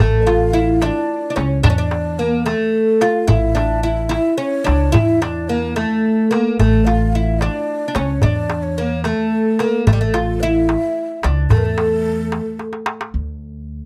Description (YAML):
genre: Arabic maqam ensemble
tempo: 73 BPM (dotted quarters)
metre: 6/8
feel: straight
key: A maqam hijaz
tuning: A4 = 441 Hz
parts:
  - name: oud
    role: melody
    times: 0.0-12.6 s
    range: G3 to F4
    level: -20 LUFS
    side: equal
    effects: none
  - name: breathy mellow ney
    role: second line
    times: 0.0-12.6 s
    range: A4 to F5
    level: -27 LUFS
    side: equal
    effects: none
  - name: upright bass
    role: bass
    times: 0.0-13.8 s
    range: A1 to E2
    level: -22 LUFS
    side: equal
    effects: none
  - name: darbuka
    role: percussion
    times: 0.0-13.1 s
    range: none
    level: -21 LUFS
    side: equal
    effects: none
room: little or no reverb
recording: dry, close 1970s-style studio recording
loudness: -17 LUFS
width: mono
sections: 0.0-13.1 A section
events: drum fill 12.6-13.1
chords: none